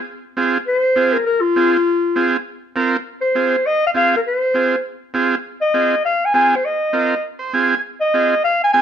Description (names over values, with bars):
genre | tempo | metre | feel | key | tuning
latin | 201 BPM | 4/4 | straight | F minor | A4 = 435 Hz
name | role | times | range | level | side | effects
combo organ | accompaniment | 0.4-8.8 s | C4 to Ab5 | -19 LUFS | right 4 dB | none
warm clarinet | melody | 0.7-8.8 s | F4 to Ab5 | -15 LUFS | left 1 dB | none
room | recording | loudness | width
light reverb | dark, warm production | -15 LUFS | side -8 dB against mid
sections
0.0-3.1 A section; 3.1-8.8 B section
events
clarinet solo 0.0-3.1; transistor combo organ fill 7.2-7.8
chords
0.0 Fm